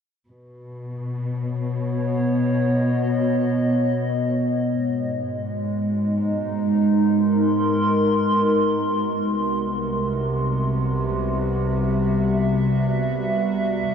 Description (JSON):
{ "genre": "ambient", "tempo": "free time", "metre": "none", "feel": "none", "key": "B major", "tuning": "A4 = 440 Hz", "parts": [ { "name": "warbly tape-like pad", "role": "sustained chords", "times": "0.8-13.9 s", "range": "B2 to B#5", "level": "-20 LUFS", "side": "equal", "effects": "chorus, built-in reverb" }, { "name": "dark symphonic cello section", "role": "bass", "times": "0.3-13.9 s", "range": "C2 to B2", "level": "-30 LUFS", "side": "equal", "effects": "none" }, { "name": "bowed-like drone", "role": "drone", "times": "4.7-13.9 s", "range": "B3 to F#4", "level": "-36 LUFS", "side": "right 1 dB", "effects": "built-in reverb" } ], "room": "wet huge ambient reverb, RT60 8.4 s", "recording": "dreamy mix soaked in reverb", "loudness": "-19 LUFS", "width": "side -7 dB against mid", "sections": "0.3-13.9 A section", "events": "fade-in on synth drone 0.3-13.9", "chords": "0.3 Badd9; 4.8 G#add9; 9.3 C", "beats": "free time" }